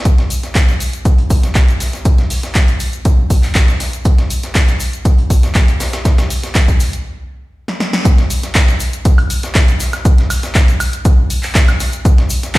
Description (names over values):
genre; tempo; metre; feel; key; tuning
house; 120 BPM; 4/4; straight; none; none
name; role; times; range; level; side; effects
breakbeat sampler-style drum kit; drums; 0.1-12.6 s; hi-hat, shaker, snare drum; -26 LUFS; equal; sidechain pumping on perc, high-pass filter on perc, high-pass filter on snare, sidechain pumping on hats, high-pass filter on hats
electronic kick drum; drums; 0.1-12.6 s; none; -11 LUFS; equal; none
punchy analog drum machine; drums; 0.1-12.6 s; handclaps, hi-hat, snare drum, woodblock; -20 LUFS; equal; none
tube shaker; percussion; 0.1-12.6 s; none; -31 LUFS; left 4 dB; none
room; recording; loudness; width
digital ambience; played on a big sound system in a bare room, large studio reverb; -11 LUFS; side -19 dB against mid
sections
0.0-8.1 A section; 8.1-12.6 B section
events
stop 7.1-8.1; drum fill 7.7-8.1; band accent 7.9; drop 8.1-12.6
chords
none